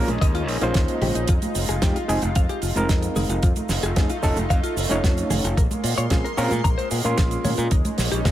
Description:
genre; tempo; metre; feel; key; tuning
nu-disco, nu disco; 112 BPM; 4/4; straight; F minor; A4 = 443 Hz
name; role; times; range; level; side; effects
overdriven reed electric piano; accompaniment; 0.0-8.3 s; Ab3 to C6; -27 LUFS; equal; fast tremolo, sidechain pumping, ping-pong delay
lush unison pad; sustained chords; 0.0-8.3 s; Ab3 to C6; -30 LUFS; equal; chorus, sidechain pumping
modern bright fingered electric bass; bass; 0.0-8.3 s; F1 to Bb2; -25 LUFS; equal; none
damped 70s drum kit; drums; 0.1-8.3 s; hi-hat, shaker, snare drum; -28 LUFS; right 3 dB; none
congas; percussion; 0.1-8.3 s; none; -32 LUFS; right 2 dB; none
direct-recorded clean electric guitar; riff; 0.2-8.3 s; Bb3 to Bb5; -30 LUFS; left 4 dB; analog chorus, low-pass filter, ping-pong delay
electronic kick drum; drums; 0.2-8.3 s; none; -21 LUFS; equal; none
room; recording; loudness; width
small room ambience; none; -19 LUFS; side -12 dB against mid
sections
0.0-8.3 A section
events
none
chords
0.0 Eb9sus4; 1.3 Fm7; 3.4 F7alt; 5.6 Bbm9; 7.7 Eb7sus4

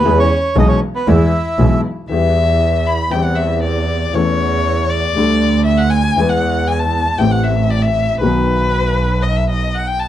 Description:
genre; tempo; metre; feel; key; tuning
tango; 118 BPM; 4/4; rubato; E minor; A4 = 440 Hz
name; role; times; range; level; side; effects
bandoneon; melody; 0.0-1.8 s; B4 to E5; -18 LUFS; right 4 dB; none
rich violin; second line; 0.0-10.1 s; B3 to B5; -19 LUFS; left 4 dB; none
warm grand piano; accompaniment; 0.0-10.1 s; A1 to B4; -18 LUFS; left 4 dB; none
clear double bass; bass; 0.0-10.1 s; A1 to E2; -17 LUFS; right 3 dB; none
room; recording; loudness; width
studio reverb; dry, close 1970s-style studio recording; -13 LUFS; side -12 dB against mid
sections
0.0-2.1 A section; 2.1-10.1 B section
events
violin solo 2.1-10.1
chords
0.0 E; 2.1 Em; 3.1 C/E; 4.1 A/E; 5.2 Dsus4; 6.2 E; 7.2 Am7; 8.2 B

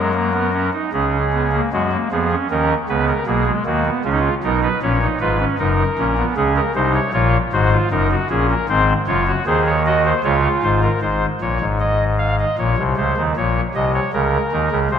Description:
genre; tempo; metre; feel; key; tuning
classical, baroque-style 3-part fugue for pipe organ; 77 BPM; 3/4; straight; F# major; A4 = 439 Hz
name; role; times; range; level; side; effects
pipe organ, soft reed; solo; 0.0-15.0 s; F#1 to F5; -16 LUFS; equal; none
room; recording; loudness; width
wet scoring stage reverb, RT60 1.9 s; none; -16 LUFS; side -8 dB against mid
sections
0.0-1.7 A section; 1.7-11.0 B section; 11.0-15.0 A section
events
none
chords
0.0 C#sus4/F#; 0.9 C#5; 1.7 F#; 3.3 G#m7/B; 4.0 C#7; 5.6 F#; 6.4 C#; 7.9 D#m7/F#; 8.7 G#7; 10.2 C#; 11.0 Fm7/Ab (rootless); 12.6 D#5/A#

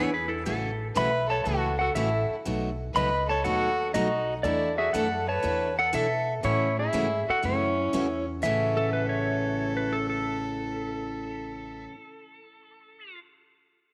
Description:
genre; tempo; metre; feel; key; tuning
country, western swing; 120 BPM; 4/4; swing 69% on 8ths; A major; A4 = 440 Hz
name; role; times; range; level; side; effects
pedal steel guitar; melody; 0.0-11.8 s; E4 to B5; -30 LUFS; equal; none
clean lap steel guitar; second line; 0.0-0.9, 8.8-13.2 s; E4 to C#5; -36 LUFS; equal; none
rich fiddle; second line; 0.0-11.8 s; C#4 to B4; -35 LUFS; equal; none
picked steel-string acoustic guitar; accompaniment; 0.0-12.0 s; A2 to A4; -34 LUFS; equal; none
upright bass; bass; 0.0-11.8 s; A1 to B2; -36 LUFS; equal; none
room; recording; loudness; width
moderate plate reverb, RT60 2.6 s; none; -27 LUFS; mono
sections
0.0-8.4 A section; 8.4-12.4 B section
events
none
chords
0.5 A69; 2.5 B7; 4.4 E7sus4; 6.4 A6

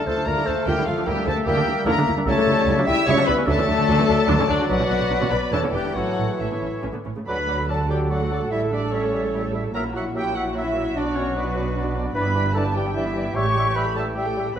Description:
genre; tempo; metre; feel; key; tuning
quick classical-period movement for symphony orchestra; 148 BPM; 3/4; rubato; D major; A4 = 440 Hz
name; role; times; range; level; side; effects
muted chamber violin section; melody; 0.0-14.6 s; B4 to E6; -30 LUFS; left 4 dB; none
mellow hollow silver concert flute; second line; 0.0-14.6 s; F#4 to C#6; -28 LUFS; left 1 dB; none
muted chamber violin section; second line; 0.0-14.6 s; D4 to C#6; -30 LUFS; left 2 dB; none
warm oboe; second line; 0.0-14.5 s; C#5 to F5; -32 LUFS; right 2 dB; none
mellow bassoon; accompaniment; 0.0-14.6 s; E3 to Bb3; -32 LUFS; right 2 dB; none
mellow clarinet; second line; 0.1-14.6 s; B3 to E5; -30 LUFS; left 2 dB; none
muted chamber viola section; accompaniment; 0.1-14.6 s; C#3 to A4; -30 LUFS; right 2 dB; none
mellow French horn section; sustained chords; 0.1-14.6 s; D3 to F#4; -28 LUFS; left 5 dB; none
muted chamber cello section; bass; 0.1-14.6 s; E2 to D3; -29 LUFS; right 2 dB; none
muted chamber double bass section; bass; 0.1-14.6 s; E1 to D2; -28 LUFS; right 3 dB; none
warm trumpet section; stabs; 7.3-14.6 s; F#4 to A4; -30 LUFS; right 2 dB; none
room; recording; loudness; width
moderate scoring stage reverb, RT60 1.7 s; none; -19 LUFS; side -9 dB against mid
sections
0.0-7.3 A section; 7.3-14.6 B section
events
none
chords
0.0 Dm; 1.1 Em7b5/D; 2.3 A7/C#; 3.5 D; 4.7 Bm; 5.5 Em7; 6.0 A; 7.3 D; 8.5 A7; 9.7 F#7/A#; 11.0 Bm; 12.1 Em7/G; 13.4 A7

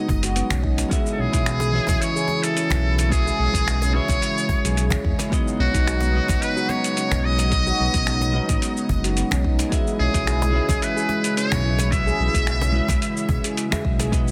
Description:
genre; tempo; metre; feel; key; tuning
organic downtempo; 109 BPM; 4/4; swing 53% on 16ths; unclear; A4 = 443 Hz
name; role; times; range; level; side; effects
trumpet with metal mute; melody; 0.0-13.6 s; F#4 to E5; -28 LUFS; equal; delay
clean electric guitar; accompaniment; 0.0-14.3 s; E3 to E5; -32 LUFS; equal; spring reverb, sidechain pumping, tape echo
warm analog pad; sustained chords; 0.0-14.3 s; C#3 to E4; -33 LUFS; equal; chorus, vintage 12-bit sampler grit, sidechain pumping
handpan; arpeggios; 0.0-14.3 s; G#3 to G#4; -31 LUFS; equal; tape echo
smooth gliding synth bass; bass; 0.1-14.3 s; F#1 to E2; -25 LUFS; equal; sidechain pumping
electronic kick drum; drums; 0.1-14.2 s; none; -26 LUFS; equal; none
cajon; percussion; 0.1-14.1 s; none; -31 LUFS; equal; none
dusty soul sampler-style drum kit; drums; 0.2-14.3 s; finger snaps, hi-hat, shaker; -31 LUFS; equal; overdrive, soft clipping on snare
room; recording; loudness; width
light reverb; dense, heavily limited modern master; -21 LUFS; mono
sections
0.0-14.3 A section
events
none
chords
0.0 Badd9; 0.9 C#m/B; 5.3 Badd9; 9.7 C#m/B

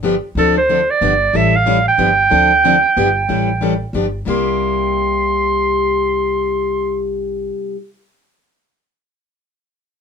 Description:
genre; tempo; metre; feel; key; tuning
acoustic string swing (jazz manouche); 184 BPM; 3/4; swing 59% on 8ths; C mixolydian; A4 = 444 Hz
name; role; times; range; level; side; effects
picked plugged-in steel-string acoustic guitar; accompaniment; 0.0-7.8 s; C3 to A4; -18 LUFS; left 4 dB; none
upright bass; bass; 0.0-7.5 s; G1 to D2; -23 LUFS; equal; none
clear clarinet; melody; 0.4-7.0 s; A4 to C6; -15 LUFS; right 4 dB; none
room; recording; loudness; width
light reverb; minimal, uncompressed stereo recording; -13 LUFS; side -6 dB against mid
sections
0.4-4.3 A section; 4.3-6.2 B section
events
none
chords
0.4 Dm7; 1.0 G7; 1.3 A7; 2.0 G7; 2.3 Dm7; 3.0 G7; 3.3 A7; 4.0 G7; 4.3 C7

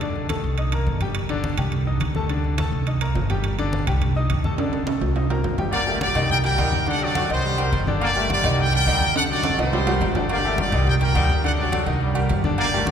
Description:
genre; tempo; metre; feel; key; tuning
latin, salsa; 210 BPM; 4/4; straight; unclear; A4 = 440 Hz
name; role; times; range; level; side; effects
clear baby grand piano; accompaniment; 0.0-12.9 s; D3 to Eb6; -27 LUFS; left 2 dB; none
upright bass; bass; 0.0-12.9 s; G1 to D2; -24 LUFS; right 1 dB; none
congas; percussion; 0.0-12.9 s; none; -28 LUFS; left 1 dB; none
timbales and agogo bells; percussion; 0.0-12.9 s; none; -29 LUFS; right 4 dB; none
bright trumpet section; melody; 5.7-12.9 s; Eb4 to G5; -23 LUFS; left 1 dB; none
clear trombone section; second line; 5.7-12.9 s; F#3 to Bb3; -29 LUFS; left 1 dB; none
room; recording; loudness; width
wet cathedral reverb, RT60 6.2 s; recorded in a church or concert hall; -19 LUFS; side -8 dB against mid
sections
0.0-5.7 A section; 5.7-12.9 B section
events
drum fill 4.6-5.7, 9.2-10.3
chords
0.0 D5; 0.6 Cm7; 1.2 G5; 1.7 Cm; 2.3 D5; 2.9 Cm7; 3.4 G5; 4.0 Cm; 4.6 D5; 5.2 Cm7; 6.9 D7; 7.4 Cm7; 9.2 D7; 9.7 Cm7; 11.4 D7; 12.0 Cm7

